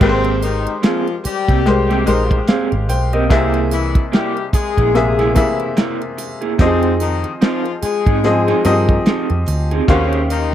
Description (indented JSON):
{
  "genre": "lush 1970s-style soul",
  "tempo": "73 BPM",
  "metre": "4/4",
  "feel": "swing 58% on 16ths",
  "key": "Ab major",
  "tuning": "A4 = 439 Hz",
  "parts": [
    { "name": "clear grand piano", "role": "accompaniment", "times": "0.0-10.5 s", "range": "C3 to G5", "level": "-19 LUFS", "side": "left 2 dB", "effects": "none" },
    { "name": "electric guitar through a small old amp", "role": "riff", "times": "0.0-10.3 s", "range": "Bb3 to C5", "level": "-22 LUFS", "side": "right 6 dB", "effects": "tremolo" },
    { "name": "warm horn section", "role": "stabs", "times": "0.0-10.5 s", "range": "C3 to Ab4", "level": "-21 LUFS", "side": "left 7 dB", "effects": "none" },
    { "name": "vintage muted picked electric bass", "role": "bass", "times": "0.0-10.5 s", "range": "Ab1 to Ab2", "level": "-18 LUFS", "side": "right 1 dB", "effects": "none" },
    { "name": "warm soul drum kit", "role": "drums", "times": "0.0-10.5 s", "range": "crash cymbal, hi-hat, kick drum, snare drum", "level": "-16 LUFS", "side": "equal", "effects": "none" },
    { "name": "triangle", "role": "percussion", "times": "0.0-10.5 s", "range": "none", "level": "-34 LUFS", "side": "right 14 dB", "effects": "none" }
  ],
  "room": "small room ambience",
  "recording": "dry, close 1970s-style studio recording",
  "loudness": "-14 LUFS",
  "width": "side -11 dB against mid",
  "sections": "0.0-10.5 A section",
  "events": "none",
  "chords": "0.0 Abmaj9; 3.3 C7b13; 6.6 Fm7; 9.9 Eb13"
}